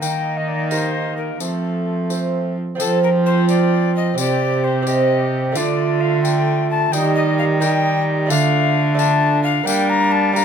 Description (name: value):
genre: classical, renaissance-style consort dance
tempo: 87 BPM (dotted quarters)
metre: 6/8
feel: straight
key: F mixolydian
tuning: A4 = 440 Hz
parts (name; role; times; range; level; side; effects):
- alto recorder; melody; 0.0-10.4 s; A4 to Bb5; -22 LUFS; left 7 dB; none
- warm viola; second line; 0.0-10.4 s; C4 to G4; -24 LUFS; right 8 dB; none
- lute; accompaniment; 0.0-10.4 s; C3 to Bb4; -24 LUFS; right 4 dB; none
- warm bassoon; accompaniment; 0.0-10.4 s; G3 to C4; -25 LUFS; left 3 dB; none
- rich cello; bass; 0.0-10.4 s; C3 to G3; -20 LUFS; right 2 dB; none
- tambourine; percussion; 0.0-10.4 s; none; -29 LUFS; left 8 dB; none
room: light reverb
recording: none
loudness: -16 LUFS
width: side -7 dB against mid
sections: 0.0-2.8 A section; 2.8-10.4 A section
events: none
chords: 0.0 Eb; 1.4 F; 4.2 Cm; 5.6 Dm; 6.9 Eb; 8.3 Dm; 9.7 Gm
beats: | 0.02 0.71 | 1.41 2.10 | 2.80 3.49 | 4.18 4.87 | 5.56 6.25 | 6.93 7.62 | 8.30 8.99 | 9.67 10.36